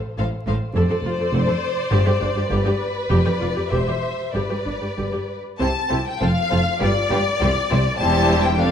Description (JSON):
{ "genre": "quick classical-period movement for string orchestra", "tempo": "94-104 BPM", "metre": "2/4", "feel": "rubato", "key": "C major", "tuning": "A4 = 440 Hz", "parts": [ { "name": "rich studio violin section", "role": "melody", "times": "0.2-8.7 s", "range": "D5 to A5", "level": "-25 LUFS", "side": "left 4 dB", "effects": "none" }, { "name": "rich studio violin section", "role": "second line", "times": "0.2-8.7 s", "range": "G4 to D5", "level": "-26 LUFS", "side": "left 2 dB", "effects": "none" }, { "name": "rich studio viola section", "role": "accompaniment", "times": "0.2-8.7 s", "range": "G3 to A4", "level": "-26 LUFS", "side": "equal", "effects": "none" }, { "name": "clear studio cello section", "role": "bass", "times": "0.2-8.7 s", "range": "C2 to C3", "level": "-25 LUFS", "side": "right 1 dB", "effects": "none" }, { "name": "clear studio double bass section", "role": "bass", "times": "0.2-8.7 s", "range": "E1 to C2", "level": "-24 LUFS", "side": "right 1 dB", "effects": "none" } ], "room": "wet recital hall reverb, RT60 1.6 s", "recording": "dark, warm production, vinyl crackle", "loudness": "-18 LUFS", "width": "side -8 dB against mid", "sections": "0.0-5.6 A section; 5.6-8.7 B section", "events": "none", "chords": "0.0 F/A; 0.8 Dm7/F; 1.9 G; 3.1 G7/F; 3.7 C/E; 4.3 G; 5.6 C; 6.2 F5; 6.8 G7(no3); 7.4 C; 8.0 C/E" }